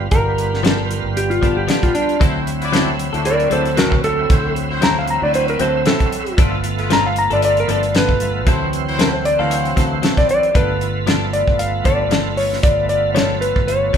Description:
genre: straight-eighth soul blues.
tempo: 115 BPM.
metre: 4/4.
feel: swing 55% on 16ths.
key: G mixolydian.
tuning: A4 = 440 Hz.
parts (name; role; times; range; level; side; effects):
bright tonewheel organ; accompaniment; 0.0-14.0 s; E3 to F4; -24 LUFS; right 5 dB; slow rotary speaker, overdrive, chorus vibrato.
fingered electric bass; bass; 0.0-14.0 s; G1 to D2; -23 LUFS; left 1 dB; none.
clean lap steel guitar; melody; 0.1-14.0 s; D4 to Bb5; -18 LUFS; equal; none.
damped 70s drum kit; drums; 0.1-14.0 s; hi-hat, kick drum, snare drum; -18 LUFS; equal; none.
direct-recorded clean electric guitar; stabs; 0.6-14.0 s; F3 to A4; -25 LUFS; left 5 dB; none.
bright horn section; sustained chords; 2.2-9.9 s; E3 to D5; -27 LUFS; left 2 dB; none.
room: moderate large studio reverb, RT60 1.1 s.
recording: band playing live in one room.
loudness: -14 LUFS.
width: side -8 dB against mid.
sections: 0.0-10.6 A section; 10.6-14.0 B section.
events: electric slide guitar solo 0.0-10.6.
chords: 0.0 G9; 2.2 D9; 6.4 G9; 8.5 D9; 10.6 G9.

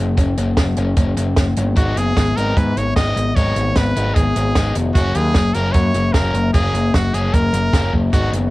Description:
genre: indie rock.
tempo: 151 BPM.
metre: 4/4.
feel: straight.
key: F# major.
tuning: A4 = 438 Hz.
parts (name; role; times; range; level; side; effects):
biting overdriven guitar; riff; 0.0-8.5 s; D#3 to D#4; -21 LUFS; left 4 dB; spring reverb, cassette tape.
growling picked electric bass; bass; 0.0-8.5 s; E#1 to G#2; -19 LUFS; right 1 dB; overdrive.
compact cocktail drum kit; drums; 0.2-8.4 s; hi-hat, kick drum, snare drum; -18 LUFS; right 1 dB; none.
brilliant trumpet; melody; 1.8-8.3 s; F#4 to D#5; -22 LUFS; equal; cassette tape.
room: little or no reverb.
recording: home recording on cassette.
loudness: -14 LUFS.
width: side -18 dB against mid.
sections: 0.0-1.8 A section; 1.8-8.5 B section.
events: drum fill 7.9.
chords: 0.0 F#; 1.8 G#m; 5.0 F#.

